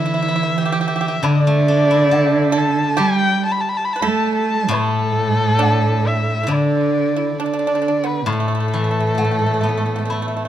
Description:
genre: chinese traditional, Chinese chamber ensemble.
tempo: 68 BPM.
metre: 4/4.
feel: rubato.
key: A shang mode.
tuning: A4 = 439 Hz.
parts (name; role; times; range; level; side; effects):
dark erhu; melody; 0.0-10.5 s; A4 to B5; -20 LUFS; left 1 dB; none.
pipa; second line; 0.0-10.5 s; A3 to B4; -26 LUFS; right 4 dB; none.
rich cello; second line; 0.0-10.5 s; A2 to A3; -20 LUFS; right 4 dB; none.
steel-string zither; accompaniment; 0.0-10.5 s; A2 to A4; -22 LUFS; left 2 dB; none.
woodblock; percussion; 1.2-10.3 s; none; -30 LUFS; left 6 dB; none.
room: moderate recital hall reverb, RT60 1.4 s.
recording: close, detailed microphones.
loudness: -15 LUFS.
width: side -11 dB against mid.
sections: 0.0-10.5 A section.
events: none.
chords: none.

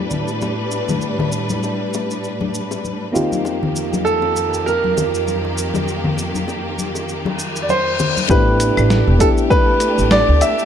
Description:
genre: sunset chillout.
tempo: 99 BPM.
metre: 4/4.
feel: swing 56% on 16ths.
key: unclear.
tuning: A4 = 440 Hz.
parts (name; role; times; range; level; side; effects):
soft electric-piano-like synth keys; accompaniment; 0.0-10.7 s; A3 to G4; -23 LUFS; moving between left 2 dB and right 7 dB; chorus, auto-pan, digital delay.
clear studio string section; sustained chords; 0.0-10.7 s; F2 to B4; -23 LUFS; equal; low-pass filter.
dusty soul sampler-style drum kit; drums; 0.1-10.7 s; cabasa, claves, hi-hat, snare drum; -23 LUFS; equal; small room ambience.
congas and bongos; percussion; 0.1-8.3 s; none; -24 LUFS; left 4 dB; none.
clear concert grand piano; melody; 4.0-10.7 s; A4 to E5; -17 LUFS; right 1 dB; digital delay.
reverse cymbal; sound effects; 7.3-8.3 s; none; -24 LUFS; left 6 dB; none.
upright bass; bass; 8.3-10.4 s; E1 to D2; -16 LUFS; equal; none.
electronic kick drum; drums; 8.3-9.6 s; none; -16 LUFS; equal; overdrive, small room ambience.
room: moderate plate reverb, RT60 1.6 s, small room ambience.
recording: dark, warm production.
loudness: -15 LUFS.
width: side -9 dB against mid.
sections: 0.0-8.3 A section; 8.3-10.7 B section.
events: reverse cymbal 7.3-8.3.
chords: 0.0 A9sus4; 3.1 F9sus4; 8.3 A9sus4.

